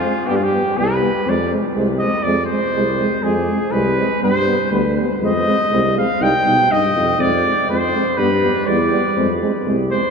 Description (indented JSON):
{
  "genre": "balkan folk, Balkan brass band",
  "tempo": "122 BPM",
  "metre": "2/4",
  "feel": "swing 54% on 16ths",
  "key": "F dorian sharp4",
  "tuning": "A4 = 440 Hz",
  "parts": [
    { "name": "mellow trumpet", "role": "melody", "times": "0.0-10.1 s", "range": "F4 to G5", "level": "-18 LUFS", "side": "equal", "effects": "none" },
    { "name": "dark trombone", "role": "accompaniment", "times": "0.0-10.0 s", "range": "B3 to Eb4", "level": "-23 LUFS", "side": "left 4 dB", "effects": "none" },
    { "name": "mellow euphonium", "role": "accompaniment", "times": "0.0-10.0 s", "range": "G3 to Ab3", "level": "-22 LUFS", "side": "right 3 dB", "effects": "none" },
    { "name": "warm tuba", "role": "bass", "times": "0.0-9.9 s", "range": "C2 to B2", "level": "-21 LUFS", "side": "equal", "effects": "none" }
  ],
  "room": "wet cathedral reverb, RT60 7.3 s",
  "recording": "recorded in a church or concert hall",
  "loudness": "-15 LUFS",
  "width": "side -5 dB against mid",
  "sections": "0.0-10.1 A section",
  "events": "trumpet solo 0.0-10.1",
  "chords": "0.3 G; 1.3 Fm; 4.2 G; 5.2 Fm; 6.2 Cm; 7.2 Fm; 8.2 G; 9.2 Fm",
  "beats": "| 0.28 0.77 | 1.26 1.76 | 2.25 2.74 | 3.24 3.73 | 4.23 4.72 | 5.22 5.71 | 6.21 6.70 | 7.20 7.69 | 8.18 8.67 | 9.17 9.66"
}